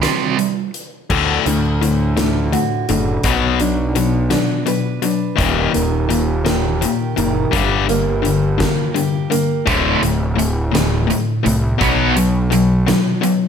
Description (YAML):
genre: quiet-loud alternative rock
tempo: 56 BPM (dotted quarters)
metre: 6/8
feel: straight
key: D mixolydian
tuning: A4 = 440 Hz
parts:
  - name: biting overdriven guitar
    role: riff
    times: 0.0-0.7, 9.7-13.5 s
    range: D2 to C4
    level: -19 LUFS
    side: right 9 dB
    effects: tremolo
  - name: fuzz picked electric bass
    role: bass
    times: 0.0-12.9 s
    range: D1 to D2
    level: -19 LUFS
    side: equal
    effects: overdrive
  - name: huge arena drum kit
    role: drums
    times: 0.0-13.4 s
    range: crash cymbal, hi-hat, kick drum, snare drum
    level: -23 LUFS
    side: equal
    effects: none
  - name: fingerpicked steel-string acoustic guitar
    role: arpeggios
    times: 1.1-9.7 s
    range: D2 to B4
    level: -22 LUFS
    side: right 7 dB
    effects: none
  - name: overdriven electric guitar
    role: riff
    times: 1.1-13.5 s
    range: D2 to B3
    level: -18 LUFS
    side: left 9 dB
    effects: none
room: light reverb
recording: none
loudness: -14 LUFS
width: side -7 dB against mid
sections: 0.0-1.1 A section; 1.1-13.5 B section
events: none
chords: 0.0 C5; 1.1 D; 3.2 Bm; 5.4 Eb; 7.5 Gm; 9.7 D5; 11.8 B5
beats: 0.03 | 1.10 2.17 | 3.24 4.31 | 5.38 6.46 | 7.53 8.60 | 9.67 10.74 | 11.81 12.88